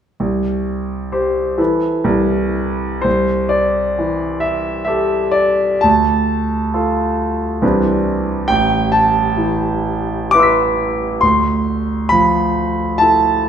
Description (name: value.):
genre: classical, impressionist solo piano.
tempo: 58-69 BPM.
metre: 3/4.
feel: rubato.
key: C major.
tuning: A4 = 438 Hz.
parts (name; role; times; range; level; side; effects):
clear concert grand piano; solo; 0.2-13.5 s; A1 to B6; -14 LUFS; equal; none.
room: moderate recital hall reverb, RT60 1.5 s.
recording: minimal, uncompressed stereo recording.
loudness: -14 LUFS.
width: side -8 dB against mid.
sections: 0.2-3.1 A section; 3.1-13.5 B section.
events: none.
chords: 0.2 C5; 1.6 Amadd9; 3.1 C69; 5.8 Dm; 7.6 Cmaj9; 8.5 Amadd9; 11.2 Dm9.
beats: | 0.20 1.13 2.05 | 3.05 4.00 4.88 | 5.84 6.74 7.62 | 8.50 9.38 10.33 | 11.22 12.11 13.00.